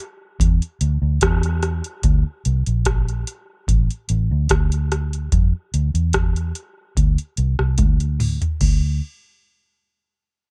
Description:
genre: dub reggae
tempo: 73 BPM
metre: 4/4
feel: straight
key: D minor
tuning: A4 = 440 Hz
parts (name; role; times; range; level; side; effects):
- vintage muted fingered electric bass; bass; 0.4-9.0 s; A1 to F2; -22 LUFS; equal; none
- booming analog drum machine; drums; 0.4-8.8 s; crash cymbal, hi-hat, kick drum, rim click, toms; -22 LUFS; equal; none
room: little or no reverb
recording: none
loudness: -20 LUFS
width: mono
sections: 0.0-8.6 A section; 8.6-10.5 B section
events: drum fill 7.8-8.6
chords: none

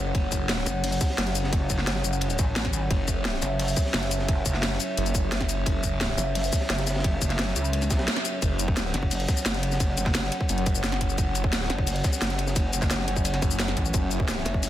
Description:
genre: dark technical drum and bass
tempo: 174 BPM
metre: 4/4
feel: straight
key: unclear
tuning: A4 = 441 Hz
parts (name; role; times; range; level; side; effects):
- dark analog pad; sustained chords; 0.0-14.7 s; F#3 to F#5; -32 LUFS; equal; chorus, sidechain pumping
- phased detuned saw bass; bass; 0.0-0.7, 2.9-6.2, 8.4-14.4 s; F#1; -28 LUFS; equal; phaser, overdrive, sidechain pumping
- crunchy breakbeat drum kit; drums; 0.1-14.7 s; hi-hat, ride cymbal, snare drum; -35 LUFS; equal; high-pass filter on cymbals, small room ambience, high-pass filter on hats, high-pass filter on snare, high-pass filter on room
- drum and bass drum kit; drums; 0.1-14.7 s; hi-hat, shaker, snare drum; -29 LUFS; left 1 dB; overdrive, small room ambience
- electronic kick drum; drums; 0.1-14.6 s; none; -26 LUFS; equal; overdrive, small room ambience
- pulsing pluck wobble bass; bass; 0.7-14.7 s; F#1 to C#2; -28 LUFS; equal; chorus
room: light reverb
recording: dense, heavily limited modern master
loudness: -23 LUFS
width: side -13 dB against mid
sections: 0.0-8.4 A section; 8.4-14.7 A section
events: drop 0.0-8.4, 8.4-14.7; band accent 8.1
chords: 0.0 F#5

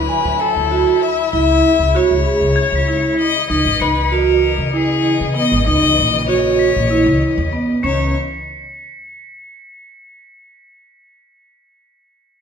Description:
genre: contemporary instrumental, chamber music in an uneven meter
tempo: 194 BPM (eighths)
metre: 7/8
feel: straight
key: C# dorian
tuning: A4 = 436 Hz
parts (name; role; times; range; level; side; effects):
- rich violin; melody; 0.0-8.1 s; G#4 to E5; -18 LUFS; left 8 dB; none
- dark chamber string section; sustained chords; 0.0-8.1 s; C#3 to D#5; -25 LUFS; left 3 dB; none
- upright bass; bass; 0.0-8.1 s; G#1 to C#3; -20 LUFS; right 1 dB; none
- vibraphone with medium mallets; arpeggios; 0.1-8.1 s; B3 to G#5; -17 LUFS; right 4 dB; none
- crotales; texture; 2.6-10.0 s; G#6 to C#7; -26 LUFS; left 2 dB; none
room: moderate recital hall reverb, RT60 1.3 s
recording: minimal, uncompressed stereo recording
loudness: -13 LUFS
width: side -7 dB against mid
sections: 0.0-3.5 A section; 3.5-7.8 B section; 7.8-10.0 C section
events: none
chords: 0.0 Dadd9; 1.3 C#m; 3.5 C#madd9

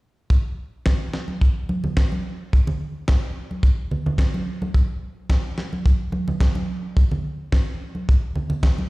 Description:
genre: nu-disco, nu disco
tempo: 108 BPM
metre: 4/4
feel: swing 53% on 16ths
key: none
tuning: none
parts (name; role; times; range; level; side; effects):
- kick drum; drums; 0.3-8.8 s; none; -18 LUFS; equal; none
- electronic snare drum; drums; 0.9-8.8 s; none; -30 LUFS; equal; none
- congas; percussion; 1.3-8.9 s; none; -26 LUFS; right 1 dB; none
room: studio reverb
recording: played on a big sound system in a bare room, stone room reverb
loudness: -20 LUFS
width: side -21 dB against mid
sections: 0.3-8.9 A section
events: none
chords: none

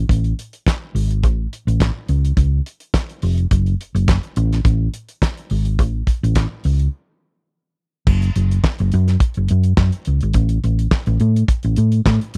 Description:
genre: disco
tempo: 105 BPM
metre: 4/4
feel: straight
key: unclear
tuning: A4 = 440 Hz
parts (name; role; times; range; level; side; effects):
- hollow-body short-scale fingered electric bass; bass; 0.0-12.4 s; F1 to A2; -18 LUFS; equal; none
- damped 70s drum kit; drums; 0.1-12.4 s; crash cymbal, handclaps, hi-hat, kick drum, snare drum; -20 LUFS; equal; none
room: little or no reverb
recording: dry, close 1970s-style studio recording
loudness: -18 LUFS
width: mono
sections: 0.0-8.1 A section; 8.1-12.4 B section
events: break 6.9-8.1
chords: none

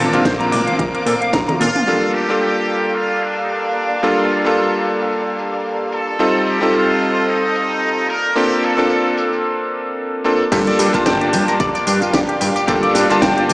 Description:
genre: nu-disco, nu disco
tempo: 111 BPM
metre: 4/4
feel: swing 56% on 16ths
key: G minor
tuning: A4 = 444 Hz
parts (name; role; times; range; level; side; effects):
- bright electric grand piano; accompaniment; 0.0-13.5 s; G3 to A5; -17 LUFS; equal; sidechain pumping, tape echo
- clear studio violin section; sustained chords; 0.0-13.5 s; Bb3 to D6; -24 LUFS; equal; sidechain pumping
- clean electric guitar; riff; 0.0-1.8, 10.5-13.5 s; D4 to Bb5; -20 LUFS; left 1 dB; lush chorus
- fat analog bass; bass; 0.0-1.7, 10.5-13.5 s; G1 to Bb2; -20 LUFS; equal; none
- house drum kit; drums; 0.1-13.5 s; crash cymbal, hi-hat, snare drum, tambourine, toms; -23 LUFS; equal; low-pass filter on hats, low-pass filter on snare, low-pass filter on toms, low-pass filter on perc, low-pass filter on cymbals
- congas; percussion; 0.1-1.6 s; none; -25 LUFS; right 1 dB; none
- electronic kick drum; drums; 0.3-1.5, 10.5-13.3 s; none; -24 LUFS; equal; none
- muted trumpet section; melody; 1.6-9.2 s; D4 to Bb4; -21 LUFS; equal; tape echo
room: wet digital room reverb, RT60 1.2 s, digital ambience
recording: played on a big sound system in a bare room, large studio reverb, small speaker sound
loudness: -14 LUFS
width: side -22 dB against mid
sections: 0.0-1.9 A section; 1.9-10.5 B section; 10.5-13.5 C section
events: drum fill 1.3-1.9; break 9.4-10.5; drop 10.5-13.5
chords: 0.0 Bb; 1.9 Gm7; 6.2 F7; 8.1 Bbmaj7; 10.5 Gm7

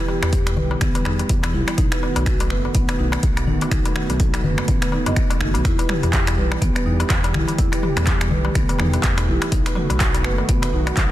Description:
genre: afro house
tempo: 124 BPM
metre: 4/4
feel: swing 58% on 16ths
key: E harmonic minor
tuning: A4 = 442 Hz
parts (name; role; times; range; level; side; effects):
- warm analog pad; sustained chords; 0.0-11.1 s; D#3 to G4; -28 LUFS; right 2 dB; chorus, sidechain pumping
- marimba with medium mallets; arpeggios; 0.0-10.8 s; B3 to D#5; -27 LUFS; equal; sidechain pumping, dub echo
- darbuka; percussion; 0.1-11.0 s; none; -28 LUFS; left 4 dB; none
- smooth synth bass; bass; 0.2-11.1 s; F#1 to E2; -23 LUFS; equal; sidechain pumping
- deep house drum kit; drums; 0.2-11.1 s; finger snaps, handclaps, hi-hat, toms; -25 LUFS; right 1 dB; overdrive, soft clipping on snare
- electronic kick drum; drums; 0.3-11.1 s; none; -21 LUFS; equal; overdrive
room: little or no reverb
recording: dense, heavily limited modern master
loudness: -17 LUFS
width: side -14 dB against mid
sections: 0.0-11.1 A section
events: none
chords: 0.0 Em; 1.8 B7; 5.7 Em; 9.5 B7

